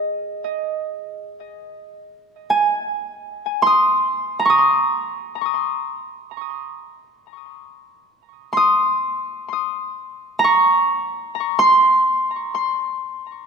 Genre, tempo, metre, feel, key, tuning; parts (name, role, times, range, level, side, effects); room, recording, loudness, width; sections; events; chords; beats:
ambient; free time; A4 = 441 Hz
Celtic harp; solo; 0.0-13.5 s; Eb5 to Eb6; -18 LUFS; right 1 dB; ping-pong delay
wet concert hall reverb, RT60 2.0 s, studio ambience; -17 LUFS; side -5 dB against mid
0.0-13.5 A section
0.0 N.C.; 2.9 Bbm7; 5.8 Eb5; 11.5 N.C.
free time